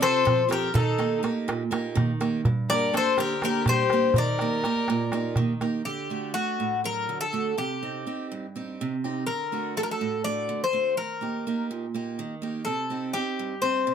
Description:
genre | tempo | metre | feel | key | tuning
greek folk, Greek bouzouki band | 246 BPM (eighths) | 7/8 | straight | D phrygian dominant | A4 = 439 Hz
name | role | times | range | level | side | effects
Greek bouzouki | melody | 0.0-13.9 s | F#4 to D5 | -26 LUFS | left 4 dB | none
dark violin | second line | 0.0-5.4 s | Eb4 to Bb4 | -30 LUFS | left 3 dB | none
picked steel-string acoustic guitar | accompaniment | 0.0-13.9 s | G2 to A4 | -29 LUFS | right 5 dB | none
darbuka | percussion | 0.0-5.7 s | none | -26 LUFS | right 2 dB | none
room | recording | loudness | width
moderate studio reverb, RT60 0.5 s | close, detailed microphones | -24 LUFS | side -8 dB against mid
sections
0.0-5.9 A section; 5.9-13.9 B section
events
none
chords
0.0 F; 0.7 Eb; 2.5 Gm; 4.2 Eb; 5.9 D; 7.6 Cm; 9.3 D; 11.0 Eb; 12.7 Cm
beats
0.01 0.25 0.50 | 0.74 0.99 1.23 1.48 1.72 1.96 2.21 | 2.45 2.69 2.94 3.18 3.43 3.67 3.91 | 4.16 4.40 4.64 4.89 5.13 5.38 5.62 | 5.86 6.11 6.35 6.59 6.84 7.08 7.33 | 7.57 7.81 8.06 8.30 8.54 8.79 9.03 | 9.27 9.52 9.76 10.00 10.24 10.49 10.73 | 10.97 11.22 11.46 11.70 11.94 12.19 12.43 | 12.67 12.91 13.15 13.39 13.63 13.88

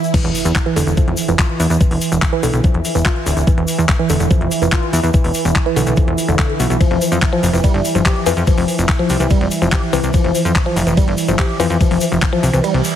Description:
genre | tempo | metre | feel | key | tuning
psychedelic trance | 144 BPM | 4/4 | straight | E phrygian | A4 = 439 Hz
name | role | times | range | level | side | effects
evolving wavetable pad | sustained chords | 0.0-13.0 s | E3 | -22 LUFS | right 2 dB | chorus, built-in reverb, sidechain pumping
egg shaker | percussion | 0.0-12.9 s | none | -28 LUFS | left 4 dB | none
swell, impact and reverse cymbal | sound effects | 0.0-1.8, 12.8-13.0 s | none | -29 LUFS | equal | none
woody wave-folded pluck | riff | 0.1-12.7 s | D3 to G4 | -20 LUFS | moving between left 8 dB and right 6 dB | chorus, auto-pan, sidechain pumping, tape echo
electronic kick drum | drums | 0.1-12.3 s | none | -15 LUFS | left 1 dB | studio reverb
garage drum kit | drums | 0.1-12.9 s | crash cymbal, handclaps, hi-hat, ride cymbal | -23 LUFS | left 1 dB | studio reverb
plucky analog bass | bass | 0.2-12.8 s | D1 to F2 | -17 LUFS | left 1 dB | none
room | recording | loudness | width
light reverb | heavily compressed radio sound, multiband compression | -13 LUFS | side -10 dB against mid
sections
0.1-13.0 A section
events
drop 0.1-13.0; impact 0.1-1.8; kick drops out 12.6-13.0; reverse cymbal 12.8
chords
0.1 E5; 6.8 F5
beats
| 0.14 0.56 0.97 1.39 | 1.81 2.22 2.64 3.06 | 3.47 3.89 4.31 4.72 | 5.14 5.56 5.97 6.39 | 6.81 7.22 7.64 8.06 | 8.47 8.89 9.31 9.72 | 10.14 10.56 10.97 11.39 | 11.81 12.22 12.64

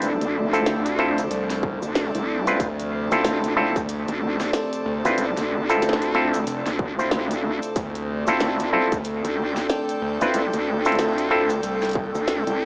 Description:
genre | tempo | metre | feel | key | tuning
glitch hop | 93 BPM | 4/4 | swing 60% on 16ths | D minor | A4 = 440 Hz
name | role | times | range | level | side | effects
warbly tape-like pad | sustained chords | 0.0-12.7 s | C3 to A4 | -30 LUFS | equal | chorus, built-in reverb, phaser, sidechain pumping, cassette tape
auto-wah clav | stabs | 0.0-11.6 s | C4 to C5 | -23 LUFS | equal | sidechain pumping, cassette tape, tape echo
vowel-sweep wobble bass | bass | 0.0-12.7 s | C2 to D2 | -26 LUFS | equal | chorus
glitchy drum kit | drums | 0.0-12.6 s | hi-hat, snare drum | -27 LUFS | equal | studio reverb
cabasa | percussion | 0.0-12.6 s | none | -44 LUFS | left 1 dB | none
airy breathy pad | texture | 0.0-12.7 s | C4 to G5 | -28 LUFS | equal | chorus, sidechain pumping, cassette tape
gritty driven synth bass | bass | 1.3-12.1 s | F1 to D2 | -29 LUFS | equal | distortion, tube saturation
electronic kick drum | drums | 1.6-12.1 s | none | -28 LUFS | equal | distortion, studio reverb
room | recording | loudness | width
moderate lush hall reverb, RT60 1.8 s | home recording on cassette, vinyl crackle, small speaker sound | -20 LUFS | side -34 dB against mid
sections
0.0-12.7 A section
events
none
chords
0.0 Dm7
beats
| 0.02 0.66 1.31 1.95 | 2.60 3.24 3.89 4.53 | 5.18 5.82 6.47 7.11 | 7.76 8.40 9.05 9.70 | 10.34 10.98 11.63 12.28

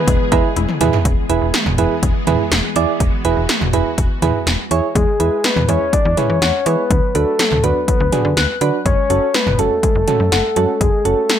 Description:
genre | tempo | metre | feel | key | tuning
synth-pop | 123 BPM | 4/4 | straight | unclear | A4 = 440 Hz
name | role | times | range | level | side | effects
soft octave-layered synth lead | melody | 0.0-0.8, 5.0-11.4 s | G#4 to D5 | -18 LUFS | left 2 dB | chorus, tape echo
string machine, violas | sustained chords | 0.0-4.9 s | E3 to G#4 | -25 LUFS | equal | ensemble chorus
warbly dusty pluck | arpeggios | 0.0-1.0, 5.0-11.4 s | F#3 to F#6 | -27 LUFS | left 12 dB | chorus, tape echo
slap-like FM bass | bass | 0.1-11.2 s | E1 to E3 | -19 LUFS | equal | none
80s electronic pad drums | drums | 0.1-11.4 s | cowbell, hi-hat, kick drum, snare drum, toms | -17 LUFS | equal | gated reverb on snare and toms
soft electric-piano-like synth keys | accompaniment | 0.3-11.2 s | C#4 to D5 | -20 LUFS | right 9 dB | chorus
room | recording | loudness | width
light reverb | none | -14 LUFS | side -10 dB against mid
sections
0.0-1.1 A section; 1.1-5.0 B section; 5.0-11.4 C section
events
drum fill 0.6-1.1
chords
0.0 E; 6.9 Bm/D; 8.9 F#madd9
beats
0.08 0.56 | 1.05 1.54 2.03 2.52 | 3.00 3.49 3.98 4.47 | 4.95 5.44 5.93 6.42 | 6.91 7.39 7.88 8.37 | 8.86 9.35 9.83 10.32 | 10.81 11.30

